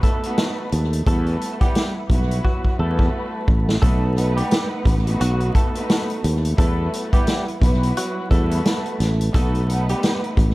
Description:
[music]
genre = hip hop, boom-bap hip-hop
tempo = 87 BPM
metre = 4/4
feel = swing 58% on 16ths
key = E harmonic minor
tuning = A4 = 440 Hz
[part]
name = direct-recorded clean electric guitar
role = melody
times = 0.0-10.2 s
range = F#3 to A4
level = -28 LUFS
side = equal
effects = analog chorus, high-pass filter, low-pass filter, tape echo
[part]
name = warm studio string section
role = accompaniment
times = 0.0-10.5 s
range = G3 to F#5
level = -27 LUFS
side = right 1 dB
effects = cassette tape, high-pass filter, low-pass filter, tape echo
[part]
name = vintage drum kit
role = drums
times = 0.0-10.5 s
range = hi-hat, kick drum, snare drum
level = -20 LUFS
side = equal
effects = none
[part]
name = sustaining fretless electric bass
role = bass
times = 0.7-10.5 s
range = A1 to E2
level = -20 LUFS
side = equal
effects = none
[sound]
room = small room ambience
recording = echo-heavy mix, vinyl crackle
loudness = -18 LUFS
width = side -20 dB against mid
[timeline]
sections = 0.0-3.8 A section; 3.8-10.5 B section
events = drum fill 2.4-3.8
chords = 0.0 B7; 1.1 Emadd9; 3.8 B7; 6.6 Emadd9; 9.3 B7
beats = 0.38 | 1.07 1.75 2.44 3.13 | 3.82 4.51 5.20 5.89 | 6.58 7.27 7.96 8.65 | 9.34 10.03

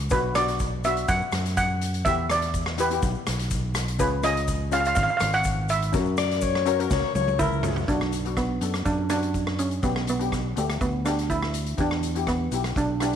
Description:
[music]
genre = calypso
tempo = 123 BPM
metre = 4/4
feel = straight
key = B minor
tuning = A4 = 440 Hz
[part]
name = fingered electric bass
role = bass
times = 0.0-13.2 s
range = G#1 to F#2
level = -28 LUFS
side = equal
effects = none
[part]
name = steel pan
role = melody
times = 0.1-13.2 s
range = A3 to F#5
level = -26 LUFS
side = right 4 dB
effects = none
[part]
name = steel pan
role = accompaniment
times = 0.1-13.2 s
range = B3 to A#4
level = -31 LUFS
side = left 11 dB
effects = none
[part]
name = street-band drum kit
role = drums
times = 0.1-13.2 s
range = hi-hat, kick drum, rim click, snare drum, toms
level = -30 LUFS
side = equal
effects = none
[part]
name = tube shaker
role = percussion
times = 0.1-13.1 s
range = none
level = -42 LUFS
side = left 14 dB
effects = none
[part]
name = clear alto saxophone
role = second line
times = 6.2-7.9 s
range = A#4 to D5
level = -27 LUFS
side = left 11 dB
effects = none
[sound]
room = moderate plate reverb, RT60 2.0 s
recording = 1960s-style stereo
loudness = -22 LUFS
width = side -8 dB against mid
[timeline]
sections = 0.0-7.9 A section; 7.9-13.2 B section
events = drum fill 6.9-7.9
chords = 0.1 Bm; 2.1 Em7; 4.0 C#; 5.9 F#7; 7.9 Bm7; 9.8 G6/B; 11.8 Em7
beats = | 0.11 0.59 1.08 1.57 | 2.05 2.54 3.02 3.51 | 3.99 4.48 4.97 5.45 | 5.94 6.42 6.91 7.40 | 7.88 8.37 8.86 9.35 | 9.83 10.32 10.81 11.30 | 11.79 12.27 12.76

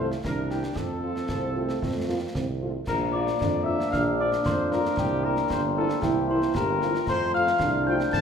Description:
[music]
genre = military-style march for wind band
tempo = 114 BPM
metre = 2/4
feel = straight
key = F major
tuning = A4 = 441 Hz
[part]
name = dark trumpet section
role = melody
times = 0.0-8.2 s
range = G4 to A5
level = -30 LUFS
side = left 2 dB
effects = none
[part]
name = warm French horn section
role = accompaniment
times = 0.0-8.0 s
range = F3 to F4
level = -34 LUFS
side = left 3 dB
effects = none
[part]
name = dark trombone section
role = sustained chords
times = 0.0-8.2 s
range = E3 to D4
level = -34 LUFS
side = equal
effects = none
[part]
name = warm tuba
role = bass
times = 0.0-8.2 s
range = G1 to F2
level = -30 LUFS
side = right 3 dB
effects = none
[part]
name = concert snare drum, concert bass drum and clash cymbals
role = drums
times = 0.1-8.2 s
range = none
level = -33 LUFS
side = equal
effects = none
[part]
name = warm euphonium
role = second line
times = 1.3-8.2 s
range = F3 to G4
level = -29 LUFS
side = right 2 dB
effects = none
[part]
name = glockenspiel with rubber mallets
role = second line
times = 2.9-8.2 s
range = G5 to A6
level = -29 LUFS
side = left 5 dB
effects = none
[sound]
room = wet large studio reverb, RT60 1.3 s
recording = minimal, uncompressed stereo recording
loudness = -23 LUFS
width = side -7 dB against mid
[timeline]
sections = 0.0-2.9 A section; 2.9-8.2 A section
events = none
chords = 0.2 C7; 0.8 F; 2.9 Bb; 5.0 C7; 7.1 F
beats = 0.24 | 0.77 1.29 | 1.82 2.35 | 2.87 3.40 | 3.92 4.45 | 4.97 5.50 | 6.02 6.55 | 7.07 7.60 | 8.12

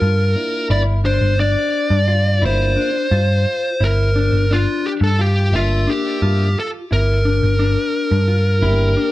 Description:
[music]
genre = progressive instrumental, progressive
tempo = 174 BPM (eighths)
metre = 9/8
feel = straight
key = unclear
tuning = A4 = 440 Hz
[part]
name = fuzz lead guitar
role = melody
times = 0.0-9.1 s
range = F4 to D5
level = -20 LUFS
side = equal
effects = distortion, digital delay
[part]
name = mellow electric guitar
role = arpeggios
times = 0.0-9.1 s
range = D4 to E5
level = -24 LUFS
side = left 4 dB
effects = none
[part]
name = hollow-body short-scale picked electric bass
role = bass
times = 0.0-9.0 s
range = G1 to G2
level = -16 LUFS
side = equal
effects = none
[part]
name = tonewheel organ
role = accompaniment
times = 0.3-9.1 s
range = Bb3 to E5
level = -25 LUFS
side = left 1 dB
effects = overdrive, slow rotary speaker
[sound]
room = light reverb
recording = dark, warm production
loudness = -15 LUFS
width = side -16 dB against mid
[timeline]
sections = 0.0-9.1 A section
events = none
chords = 0.0 Bb/G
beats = 0.01 0.36 0.70 1.05 1.39 1.74 2.08 | 2.43 2.77 3.12 3.46 3.81 4.15 4.50 4.84 5.18 | 5.53 5.87 6.22 6.56 6.91 7.25 7.59 7.94 8.28 | 8.62 8.97

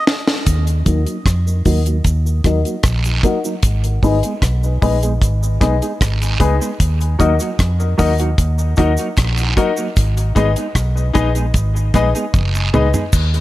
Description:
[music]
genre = dub reggae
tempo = 76 BPM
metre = 4/4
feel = straight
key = Eb minor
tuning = A4 = 441 Hz
[part]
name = deep reggae drum kit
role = drums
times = 0.1-13.4 s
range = crash cymbal, hi-hat, kick drum, rim click, snare drum, toms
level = -17 LUFS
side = equal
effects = none
[part]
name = vintage muted fingered electric bass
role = bass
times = 0.5-13.4 s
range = Gb1 to F2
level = -16 LUFS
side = equal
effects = none
[part]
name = cabasa and guiro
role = percussion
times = 0.5-13.3 s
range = none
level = -29 LUFS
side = right 4 dB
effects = dub echo
[part]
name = semi-hollow electric guitar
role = accompaniment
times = 0.9-13.0 s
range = Gb3 to Ab4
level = -23 LUFS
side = right 3 dB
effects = analog chorus, high-pass filter, low-pass filter, dub echo
[part]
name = bright upright piano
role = stabs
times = 0.9-12.9 s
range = Eb4 to Eb5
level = -21 LUFS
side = left 5 dB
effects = high-pass filter, low-pass filter, dub echo
[sound]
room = light reverb, studio reverb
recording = none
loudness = -14 LUFS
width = side -16 dB against mid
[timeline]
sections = 0.5-13.1 A section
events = break 0.0-0.5; drum fill 0.0-0.5, 12.3-13.1; filter sweep 0.5-13.1; part muted 13.1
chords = 0.5 Ebm; 3.6 Abm; 6.8 Ebm; 10.0 Abm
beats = | 0.47 1.26 2.05 2.84 | 3.63 4.42 5.21 6.00 | 6.79 7.59 8.38 9.17 | 9.96 10.75 11.54 12.33 | 13.12

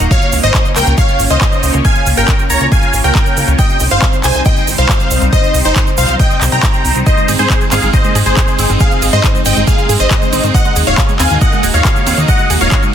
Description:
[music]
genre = uplifting trance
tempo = 138 BPM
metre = 4/4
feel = straight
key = Ab major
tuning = A4 = 439 Hz
[part]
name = supersaw stab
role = melody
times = 0.0-12.9 s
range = Eb4 to Bb5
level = -16 LUFS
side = equal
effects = phaser, sidechain pumping, ping-pong delay
[part]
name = plucky unison lead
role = second line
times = 0.0-12.9 s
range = C5 to Bb5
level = -20 LUFS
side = left 1 dB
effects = wide subtle chorus, sidechain pumping, ping-pong delay
[part]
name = lush unison pad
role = sustained chords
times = 0.0-12.9 s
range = G3 to Eb5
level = -20 LUFS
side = left 1 dB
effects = chorus, phaser, sidechain pumping
[part]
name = plucky analog bass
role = bass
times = 0.0-12.7 s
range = Eb1 to Ab2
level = -14 LUFS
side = equal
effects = sidechain pumping
[part]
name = big-room dance drum kit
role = drums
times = 0.0-12.9 s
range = handclaps, hi-hat, ride cymbal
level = -19 LUFS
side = right 2 dB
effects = none
[part]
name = egg shaker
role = percussion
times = 0.0-12.9 s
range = none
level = -25 LUFS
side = right 5 dB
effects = none
[part]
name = electronic kick drum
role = drums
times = 0.1-12.8 s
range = none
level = -13 LUFS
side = equal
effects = none
[part]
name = wide unison pluck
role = arpeggios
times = 7.1-12.9 s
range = Ab2 to Ab4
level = -21 LUFS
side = right 4 dB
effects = phaser, sidechain pumping, ping-pong delay
[sound]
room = light reverb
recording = dense, heavily limited modern master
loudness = -9 LUFS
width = side -9 dB against mid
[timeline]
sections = 0.0-12.9 A section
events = none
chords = 0.1 Bbm; 3.6 Cm; 7.1 Ab; 10.5 Ebm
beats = | 0.11 0.54 0.98 1.41 | 1.85 2.28 2.72 3.15 | 3.59 4.02 4.46 4.89 | 5.33 5.76 6.20 6.63 | 7.07 7.50 7.93 8.37 | 8.80 9.24 9.67 10.11 | 10.54 10.98 11.41 11.85 | 12.28 12.72

